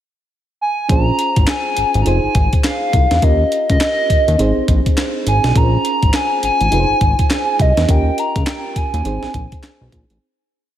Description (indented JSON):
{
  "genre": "R&B, new jack swing",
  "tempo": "103 BPM",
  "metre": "4/4",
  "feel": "swing 61% on 16ths",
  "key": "Bb minor",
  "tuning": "A4 = 441 Hz",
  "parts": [
    { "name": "hollow clarinet-like synth lead", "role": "melody", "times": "0.6-9.9 s", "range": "Eb5 to Bb5", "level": "-18 LUFS", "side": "equal", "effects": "chorus, phaser, slapback echo" },
    { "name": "mellow FM electric piano", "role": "accompaniment", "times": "0.9-10.2 s", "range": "C4 to C5", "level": "-23 LUFS", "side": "right 2 dB", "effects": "chorus, slapback echo" },
    { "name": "fat analog bass", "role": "bass", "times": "0.9-10.2 s", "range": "F1 to E2", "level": "-17 LUFS", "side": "equal", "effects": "none" },
    { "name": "breakbeat sampler-style drum kit", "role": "drums", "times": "0.9-10.2 s", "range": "handclaps, hi-hat, kick drum, snare drum", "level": "-17 LUFS", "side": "equal", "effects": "none" }
  ],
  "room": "moderate lush hall reverb, RT60 2.7 s",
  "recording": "big arena sound",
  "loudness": "-13 LUFS",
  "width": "side -11 dB against mid",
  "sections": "0.0-0.9 pickup bar; 0.9-10.2 verse",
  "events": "fade-out 7.9-10.2",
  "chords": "0.0 N.C.; 0.9 Bbm7; 2.1 Fm7; 3.2 Eb7; 4.4 Ab; 5.6 Bbm7; 6.7 Fm7; 7.9 Eb7; 9.1 Ab",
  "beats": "0.31 | 0.90 1.48 2.06 2.64 | 3.23 3.81 4.39 4.97 | 5.55 6.14 6.72 7.30 | 7.88 8.47 9.05 9.63"
}